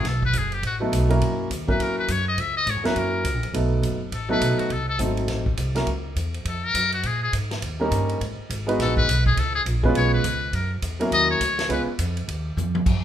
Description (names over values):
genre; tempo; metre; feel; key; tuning
jazz, small-group swing and bop; 206 BPM; 4/4; swing 62% on 8ths; F# mixolydian; A4 = 440 Hz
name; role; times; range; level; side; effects
trumpet with metal mute; melody; 0.0-11.8 s; F#4 to E5; -24 LUFS; left 3 dB; none
warm baby grand piano; accompaniment; 0.0-11.9 s; F#3 to B4; -25 LUFS; equal; none
upright bass; bass; 0.0-13.0 s; F#1 to A#2; -25 LUFS; right 1 dB; none
vintage drum kit; drums; 0.0-12.9 s; crash cymbal, hi-hat, kick drum, ride cymbal, snare drum, toms; -29 LUFS; equal; none
room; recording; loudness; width
moderate large studio reverb, RT60 1.2 s; minimal, uncompressed stereo recording; -21 LUFS; side -10 dB against mid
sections
0.0-12.9 A section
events
muted trumpet solo 0.0-12.9; drum fill 12.6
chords
0.0 B7; 1.2 F#7; 2.4 C#m; 3.0 F#7; 3.5 B7; 4.7 Cdim7; 5.9 F#7; 7.0 G#sus2; 7.6 D#7; 8.2 G#m7; 9.4 C#7; 10.5 F#7; 11.7 C#7